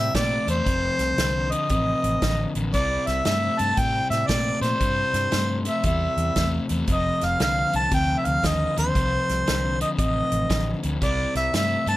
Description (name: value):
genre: electric blues shuffle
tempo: 116 BPM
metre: 4/4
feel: swing 64% on 8ths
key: unclear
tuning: A4 = 440 Hz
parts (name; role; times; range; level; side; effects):
- warm harmonica; melody; 0.0-12.0 s; C5 to A5; -24 LUFS; equal; overdrive
- crunchy overdriven guitar; riff; 0.0-12.0 s; F2 to A3; -27 LUFS; left 3 dB; none
- vintage muted fingered electric bass; bass; 0.0-12.0 s; F1 to Bb2; -27 LUFS; equal; none
- natural country drum kit; drums; 0.1-12.0 s; hi-hat, kick drum, snare drum; -28 LUFS; equal; none
room: light reverb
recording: none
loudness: -20 LUFS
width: side -16 dB against mid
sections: 0.0-12.0 A section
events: none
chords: 0.0 C7; 0.7 F7; 2.7 C; 6.9 F7; 11.0 C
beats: 0.14 | 0.66 1.18 1.70 2.22 | 2.73 3.25 3.77 4.29 | 4.81 5.33 5.84 6.36 | 6.88 7.40 7.92 8.43 | 8.95 9.47 9.99 10.50 | 11.02 11.54